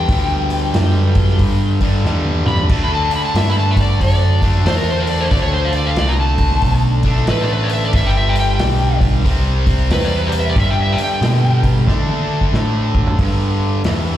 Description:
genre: blues rock power trio and southern rock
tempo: 92 BPM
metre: 4/4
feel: swing 63% on 8ths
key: G major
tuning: A4 = 440 Hz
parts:
  - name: overdriven slide guitar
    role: melody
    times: 0.0-11.7 s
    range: Bb4 to B5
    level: -20 LUFS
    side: left 1 dB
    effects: slapback echo
  - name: distorted electric guitar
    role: riff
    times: 0.0-14.2 s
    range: G2 to D4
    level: -20 LUFS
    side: equal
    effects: overdrive, slapback echo
  - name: growling picked electric bass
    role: bass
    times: 0.0-14.2 s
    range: G1 to D3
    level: -17 LUFS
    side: equal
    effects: overdrive
  - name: vintage drum kit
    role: drums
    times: 0.1-14.0 s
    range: crash cymbal, hi-hat, kick drum, snare drum, toms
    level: -19 LUFS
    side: equal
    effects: none
room: little or no reverb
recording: live gig heard through the venue's PA, recital hall reverb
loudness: -13 LUFS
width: side -12 dB against mid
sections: 0.0-13.2 A section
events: electric slide guitar solo 0.0-13.2; drum fill 2.1-2.7, 11.9-13.2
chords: 0.0 G5; 2.7 D; 7.9 G; 9.2 C; 10.6 G; 11.9 D5; 13.2 G5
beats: | 0.09 0.74 1.40 2.05 | 2.71 3.36 4.01 4.67 | 5.32 5.97 6.63 7.28 | 7.94 8.59 9.25 9.91 | 10.56 11.22 11.88 12.54 | 13.20 13.86

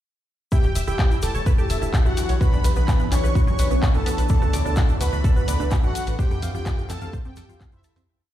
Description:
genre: melodic techno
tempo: 127 BPM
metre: 4/4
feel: straight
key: E dorian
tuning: A4 = 440 Hz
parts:
  - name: wide unison lead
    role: melody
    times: 0.5-8.0 s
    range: E4 to C#5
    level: -30 LUFS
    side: equal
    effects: sidechain pumping, ping-pong delay
  - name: soft supersaw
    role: second line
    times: 0.5-8.0 s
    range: E5 to C#6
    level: -34 LUFS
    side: right 1 dB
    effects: phaser, sidechain pumping, digital delay
  - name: deep dark ambient pad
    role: sustained chords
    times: 1.3-8.1 s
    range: B3 to F#5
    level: -33 LUFS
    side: equal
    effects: chorus, built-in reverb, sidechain pumping
  - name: tight sequenced synth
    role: arpeggios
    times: 0.5-8.0 s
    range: F#3 to F6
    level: -32 LUFS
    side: right 2 dB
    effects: chorus, sidechain pumping, digital delay
  - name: analog drone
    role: drone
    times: 0.8-8.1 s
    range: E2 to E3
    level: -33 LUFS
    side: equal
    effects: chorus, sidechain pumping
  - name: electronic kick drum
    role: drums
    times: 0.5-7.7 s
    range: none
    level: -19 LUFS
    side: equal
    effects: none
  - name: tube shaker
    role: percussion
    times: 0.5-8.1 s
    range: none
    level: -39 LUFS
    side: left 6 dB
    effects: none
  - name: tight sequencer bass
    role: bass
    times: 0.6-8.1 s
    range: E1 to F2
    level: -22 LUFS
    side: equal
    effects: sidechain pumping
  - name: house drum kit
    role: drums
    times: 0.8-8.1 s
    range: handclaps, hi-hat, rim click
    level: -33 LUFS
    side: equal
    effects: none
room: digital ambience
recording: played on a big sound system in a bare room, large studio reverb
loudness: -18 LUFS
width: side -12 dB against mid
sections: 0.5-8.1 drop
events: drop 0.5-8.1; fade-out 5.6-8.1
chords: 0.5 Em7; 2.4 Bmadd9; 4.3 D; 6.2 Fsus2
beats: | 0.52 0.99 1.46 1.94 | 2.41 2.88 3.35 3.83 | 4.30 4.77 5.24 5.72 | 6.19 6.66 7.13 7.61

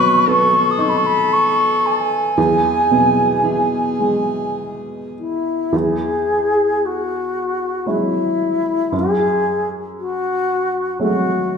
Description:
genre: celtic folk, Celtic slow air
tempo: 51-60 BPM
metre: 3/4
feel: rubato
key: E major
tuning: A4 = 439 Hz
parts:
  - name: mellow wooden flute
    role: melody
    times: 0.0-11.6 s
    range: E4 to D#6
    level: -17 LUFS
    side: equal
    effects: none
  - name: rich viola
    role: second line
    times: 0.0-5.1 s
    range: G#4 to B4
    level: -22 LUFS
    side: left 2 dB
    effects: none
  - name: warm upright piano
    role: accompaniment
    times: 0.0-11.6 s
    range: E2 to E4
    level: -21 LUFS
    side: right 1 dB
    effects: none
room: wet recital hall reverb, RT60 1.4 s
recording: recorded in a church or concert hall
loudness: -15 LUFS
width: side -6 dB against mid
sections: 0.0-5.7 A section; 5.7-11.6 B section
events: none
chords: 0.0 Badd9; 2.4 E; 5.7 Eadd9; 8.9 F#madd9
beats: 0.28 1.32 | 2.38 3.46 4.59 | 5.74 6.82 7.88 | 8.94 9.98 11.01

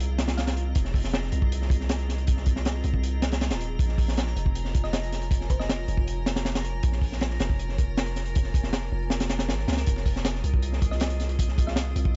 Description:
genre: drum and bass, jungle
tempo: 158 BPM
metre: 4/4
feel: straight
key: F minor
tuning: A4 = 440 Hz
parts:
  - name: granular cloud pad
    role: sustained chords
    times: 0.0-12.2 s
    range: C4 to Ab5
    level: -41 LUFS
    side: equal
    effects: built-in reverb
  - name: long sustained 808-style bass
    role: bass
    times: 0.0-12.2 s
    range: Eb1 to Db2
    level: -30 LUFS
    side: equal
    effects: tube saturation
  - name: crunchy breakbeat drum kit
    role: drums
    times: 0.0-12.1 s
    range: hi-hat, kick drum, snare drum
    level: -28 LUFS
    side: equal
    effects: none
  - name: drifting glass-harmonics texture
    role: texture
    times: 0.0-12.2 s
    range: Bb5 to Eb6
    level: -46 LUFS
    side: equal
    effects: chorus, built-in reverb
  - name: thumb-piano-like synth pluck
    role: melody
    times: 0.4-0.8, 4.8-5.9, 10.9-11.9 s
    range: C5 to F5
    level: -42 LUFS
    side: equal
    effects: chorus, dub echo
  - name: breakbeat sampler-style drum kit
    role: drums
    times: 9.9-12.0 s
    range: hi-hat, snare drum, tambourine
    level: -45 LUFS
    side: equal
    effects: none
room: small room ambience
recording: dark, warm production, nothing above 7.8 kHz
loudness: -26 LUFS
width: mono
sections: 0.0-12.2 A section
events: none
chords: 0.0 Fm7; 3.8 Bbm7; 9.9 Fm7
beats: 0.00 0.38 | 0.76 1.14 1.51 1.89 | 2.27 2.65 3.03 3.41 | 3.79 4.17 4.55 4.93 | 5.31 5.69 6.07 6.45 | 6.83 7.21 7.59 7.97 | 8.35 8.73 9.11 9.49 | 9.87 10.25 10.63 11.01 | 11.39 11.77 12.15

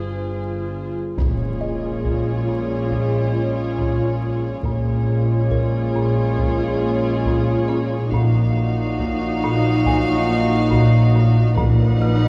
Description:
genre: cinematic, suspense film score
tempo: 69 BPM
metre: 4/4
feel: straight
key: Bb minor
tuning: A4 = 436 Hz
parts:
  - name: warm chamber violin section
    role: melody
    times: 0.0-12.3 s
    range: C5 to F#5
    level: -33 LUFS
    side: equal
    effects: none
  - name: warm symphonic violin section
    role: second line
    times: 0.0-12.3 s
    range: Gb4 to B4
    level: -32 LUFS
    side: equal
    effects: none
  - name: dark symphonic viola section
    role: accompaniment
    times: 0.0-12.3 s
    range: Eb4 to F4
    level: -30 LUFS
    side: equal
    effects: none
  - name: rich symphonic cello section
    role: bass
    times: 0.0-12.3 s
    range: G2 to Bb2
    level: -26 LUFS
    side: equal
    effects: none
  - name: warm symphonic double bass section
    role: bass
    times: 0.0-12.3 s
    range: G1 to Bb1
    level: -26 LUFS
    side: equal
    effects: none
  - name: mellow French horn section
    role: sustained chords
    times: 1.2-12.3 s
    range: Gb3 to D#4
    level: -29 LUFS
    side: equal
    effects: none
  - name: folk marimba with medium hard mallets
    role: riff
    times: 1.2-12.3 s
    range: Bb2 to Bb3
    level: -26 LUFS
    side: equal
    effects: none
  - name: taiko ensemble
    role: drums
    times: 1.2-12.3 s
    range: none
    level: -29 LUFS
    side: equal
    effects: none
  - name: impact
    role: sound effects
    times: 1.2-4.7 s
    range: none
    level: -31 LUFS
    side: equal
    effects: none
  - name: music box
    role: texture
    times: 1.6-12.3 s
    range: Db4 to F6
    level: -36 LUFS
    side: equal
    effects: none
  - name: timpani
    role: percussion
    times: 11.6-12.3 s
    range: Bb2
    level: -26 LUFS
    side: equal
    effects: none
room: moderate scoring stage reverb, RT60 1.9 s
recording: worn, warbling old tape, cassette tape, vinyl crackle, warbly pitch drift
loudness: -19 LUFS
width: mono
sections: 0.0-1.2 A section; 1.2-12.3 B section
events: impact 1.2-4.7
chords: 0.0 Fmadd9/G; 1.2 Bbm7; 8.1 Ebmadd9/Bb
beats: 0.29 | 1.18 2.05 2.91 3.78 | 4.65 5.51 6.38 7.26 | 8.13 9.00 9.86 10.72 | 11.57

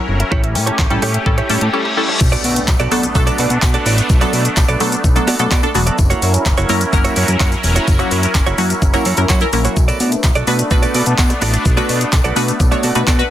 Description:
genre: dance-pop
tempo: 127 BPM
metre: 4/4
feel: straight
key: B minor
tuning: A4 = 440 Hz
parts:
  - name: wavetable chord stab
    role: accompaniment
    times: 0.0-13.3 s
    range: F#3 to C#5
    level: -19 LUFS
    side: equal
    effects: sidechain pumping
  - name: sweeping resonant pad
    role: sustained chords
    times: 0.0-13.3 s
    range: F#3 to A#4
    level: -21 LUFS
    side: equal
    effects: chorus, sidechain pumping
  - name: mallet-like synth pluck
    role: arpeggios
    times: 0.0-2.2 s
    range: C#5 to C#6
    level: -28 LUFS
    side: left 1 dB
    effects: chorus, phaser, sidechain pumping, digital delay
  - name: fat analog bass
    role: bass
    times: 0.1-13.2 s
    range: E1 to B2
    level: -18 LUFS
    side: equal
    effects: sidechain pumping
  - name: direct-recorded clean electric guitar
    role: riff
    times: 0.2-13.2 s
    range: A3 to D5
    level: -22 LUFS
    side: right 4 dB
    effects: analog chorus
  - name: pop drum kit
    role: drums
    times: 0.2-13.3 s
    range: crash cymbal, handclaps, hi-hat, kick drum, shaker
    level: -16 LUFS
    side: equal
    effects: overdrive
  - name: reverse cymbal and impact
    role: sound effects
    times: 1.5-4.1 s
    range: none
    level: -24 LUFS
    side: left 2 dB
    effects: none
  - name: tambourine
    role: percussion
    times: 2.2-13.2 s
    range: none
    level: -32 LUFS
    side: left 7 dB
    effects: none
room: digital ambience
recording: dense, heavily limited modern master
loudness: -12 LUFS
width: side -12 dB against mid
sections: 0.0-2.2 A section; 2.2-13.3 B section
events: reverse cymbal 1.5-2.2; impact 2.2-4.1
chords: 0.3 A7; 2.2 Bm7; 6.0 F#7; 9.8 Bm7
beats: | 0.32 0.79 1.26 1.74 | 2.21 2.68 3.15 3.62 | 4.10 4.57 5.04 5.51 | 5.99 6.46 6.93 7.40 | 7.88 8.35 8.82 9.29 | 9.77 10.24 10.71 11.18 | 11.66 12.13 12.60 13.07

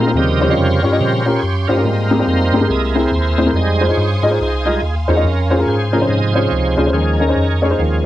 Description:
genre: uptempo gospel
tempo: 141 BPM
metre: 4/4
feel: swing 60% on 8ths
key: unclear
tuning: A4 = 440 Hz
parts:
  - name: warm upright piano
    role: accompaniment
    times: 0.0-8.1 s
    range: Ab2 to Eb5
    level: -17 LUFS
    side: left 2 dB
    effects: none
  - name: bright tonewheel organ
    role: sustained chords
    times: 0.0-8.1 s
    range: C3 to F5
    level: -19 LUFS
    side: right 3 dB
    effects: slow rotary speaker, overdrive, chorus vibrato
  - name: warm studio string section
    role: sustained chords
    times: 0.0-8.1 s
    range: Eb5 to Eb6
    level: -29 LUFS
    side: right 2 dB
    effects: none
  - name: mellow tine electric piano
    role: bass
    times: 0.0-8.1 s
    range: C2 to Bb2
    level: -18 LUFS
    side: equal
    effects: medium stereo tremolo
room: little or no reverb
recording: dry, close 1970s-style studio recording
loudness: -13 LUFS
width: side -14 dB against mid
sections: 0.0-8.1 A section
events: tonewheel organ solo 0.0-8.1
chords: 0.1 Eb13; 1.8 Abmaj9; 2.7 C7alt; 3.5 Fm7; 5.2 Dbmaj7/F; 6.9 Eb7sus4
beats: | 0.15 0.57 1.00 1.42 | 1.85 2.27 2.70 3.12 | 3.54 3.97 4.39 4.82 | 5.24 5.67 6.09 6.51 | 6.94 7.36 7.78

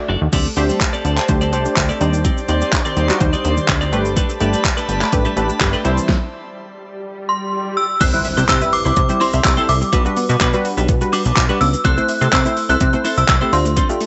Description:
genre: dance-pop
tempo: 125 BPM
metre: 4/4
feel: straight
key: unclear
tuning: A4 = 440 Hz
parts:
  - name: analog pluck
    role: accompaniment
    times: 0.0-14.1 s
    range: G3 to D5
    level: -25 LUFS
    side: equal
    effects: chorus
  - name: clean electric guitar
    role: riff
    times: 0.1-14.0 s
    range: G3 to D5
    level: -28 LUFS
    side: equal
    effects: lush chorus
  - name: plucky analog bass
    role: bass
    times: 0.1-13.8 s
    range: F#1 to C3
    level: -21 LUFS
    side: equal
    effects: sidechain pumping
  - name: airy breathy pad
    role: sustained chords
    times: 0.3-6.1 s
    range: G4 to C6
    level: -28 LUFS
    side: equal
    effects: chorus, sidechain pumping
  - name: unison pluck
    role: arpeggios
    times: 0.3-14.1 s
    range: Eb3 to E5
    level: -30 LUFS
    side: equal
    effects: none
  - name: pop drum kit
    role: drums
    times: 0.3-14.1 s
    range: crash cymbal, handclaps, hi-hat, kick drum, shaker, snare drum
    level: -21 LUFS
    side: equal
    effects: overdrive
  - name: swell and impact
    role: sound effects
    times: 6.5-9.9 s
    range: none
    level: -31 LUFS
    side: equal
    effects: none
  - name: synth chime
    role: melody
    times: 7.3-14.1 s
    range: C6 to F#6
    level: -21 LUFS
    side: equal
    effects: ensemble chorus, tape echo
  - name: group handclap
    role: percussion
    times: 8.5-13.4 s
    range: none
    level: barely audible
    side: none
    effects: none
room: light reverb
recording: nothing above 8.0 kHz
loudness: -17 LUFS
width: mono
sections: 0.3-8.0 A section; 8.0-14.1 B section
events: stop 6.1-8.0; swell 6.5-8.0; impact 8.0-9.9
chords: 0.3 D7sus4; 2.0 Cmadd9/Eb; 3.9 Gadd9; 5.8 C; 9.9 Gmaj7/B; 11.8 Am/C; 13.5 Dm7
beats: | 0.33 0.81 1.29 1.77 | 2.25 2.73 3.21 3.69 | 4.17 4.65 5.13 5.61 | 6.09 6.57 7.05 7.53 | 8.01 8.49 8.97 9.45 | 9.93 10.41 10.89 11.37 | 11.85 12.33 12.81 13.29 | 13.77

